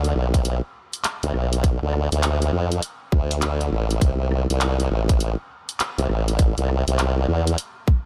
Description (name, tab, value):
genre	glitch hop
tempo	101 BPM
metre	4/4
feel	swing 63% on 16ths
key	D dorian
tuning	A4 = 440 Hz
part	formant-sweep wobble bass	bass	0.0-7.6 s	A1 to F2	-23 LUFS	equal	chorus
part	drum and bass drum kit	drums	0.0-7.7 s	handclaps, hi-hat, rim click	-31 LUFS	equal	small room ambience
part	electronic kick drum	drums	0.3-8.0 s	none	-20 LUFS	equal	small room ambience
room	little or no reverb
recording	none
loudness	-22 LUFS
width	mono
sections	0.0-8.1 A section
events	none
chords	none